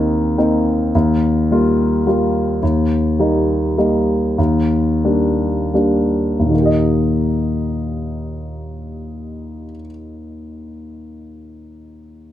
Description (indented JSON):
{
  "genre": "folk",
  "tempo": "72-107 BPM",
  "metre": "3/4",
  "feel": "straight",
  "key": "Eb major",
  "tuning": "A4 = 440 Hz",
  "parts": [
    { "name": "warm concert grand piano", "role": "solo", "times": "0.0-12.3 s", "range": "Eb2 to Eb5", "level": "-16 LUFS", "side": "equal", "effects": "none" }
  ],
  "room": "light reverb",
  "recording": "none",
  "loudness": "-14 LUFS",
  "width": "side -12 dB against mid",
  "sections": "0.0-6.5 A section; 6.5-11.5 B section",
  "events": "slowing down 2.6-6.5",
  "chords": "0.0 Cm7/Eb; 0.9 Gm7/Eb; 2.6 Eb; 4.4 Bb6/Eb; 6.5 Eb"
}